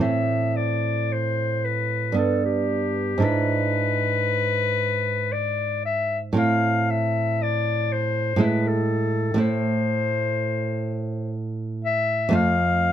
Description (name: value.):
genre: romantic duo for clarinet and classical guitar.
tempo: 54-62 BPM.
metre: 3/4.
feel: rubato.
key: A minor.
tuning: A4 = 443 Hz.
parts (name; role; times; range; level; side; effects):
warm clarinet; melody; 0.0-12.9 s; G4 to F5; -24 LUFS; left 5 dB; none.
nylon-string guitar; accompaniment; 0.0-12.9 s; F2 to F4; -23 LUFS; right 3 dB; none.
room: light reverb.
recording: none.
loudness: -21 LUFS.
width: side -10 dB against mid.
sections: 0.0-12.9 A section.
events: none.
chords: 0.0 Am; 2.2 G; 3.2 E7/G#; 6.4 Am; 8.4 E/A; 9.4 Am; 12.3 F.